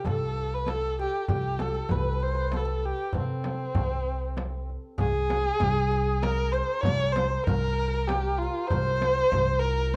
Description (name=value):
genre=Persian modal ensemble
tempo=97 BPM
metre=3/4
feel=straight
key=C dastgah shur from 5.0 s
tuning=A4 = 440 Hz
part: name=dark kamancheh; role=melody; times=0.0-10.0 s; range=C4 to Db5+40c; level=-30 LUFS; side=equal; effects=none
part: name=santur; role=second line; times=0.0-10.0 s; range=C4 to Db5+45c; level=-40 LUFS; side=equal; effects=none
part: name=frame drum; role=percussion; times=0.0-10.0 s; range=none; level=-36 LUFS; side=equal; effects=none
part: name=upright bass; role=bass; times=0.1-10.0 s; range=C2 to C3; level=-32 LUFS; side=equal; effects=none
part: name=tombak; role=percussion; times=0.1-9.5 s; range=none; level=-35 LUFS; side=equal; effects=none
room=moderate small room reverb, RT60 0.5 s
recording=dark, warm production, nothing above 10.6 kHz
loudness=-27 LUFS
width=mono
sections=0.0-5.0 A section; 5.0-10.0 B section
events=none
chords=none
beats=0.05 0.67 | 1.29 1.91 2.52 | 3.14 3.76 4.38 | 5.00 5.62 6.23 | 6.85 7.47 8.09 | 8.70 9.32 9.94